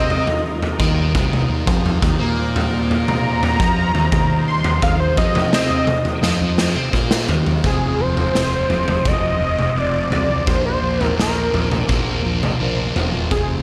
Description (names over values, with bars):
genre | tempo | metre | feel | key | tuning
psychedelic rock | 85 BPM | 4/4 | straight | unclear | A4 = 441 Hz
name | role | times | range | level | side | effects
unison lead | melody | 0.0-13.5 s | Ab4 to C6 | -24 LUFS | equal | analog delay
bright symphonic string section | sustained chords | 0.0-13.6 s | G3 to C5 | -34 LUFS | equal | none
fuzz guitar | riff | 0.0-13.6 s | F2 to C4 | -25 LUFS | equal | distortion, phaser
fuzz fingered electric bass | bass | 0.0-13.6 s | E1 to C3 | -26 LUFS | equal | overdrive
raw garage drum kit | drums | 0.1-13.5 s | kick drum, snare drum, toms | -22 LUFS | equal | none
room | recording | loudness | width
light reverb, small room reverb | none | -18 LUFS | mono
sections
0.0-7.6 A section; 7.6-13.6 B section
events
analog synth lead solo 0.0-7.6; drum fill 6.2-7.6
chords
0.0 Ebadd9; 7.6 Fm; 10.5 Bbadd9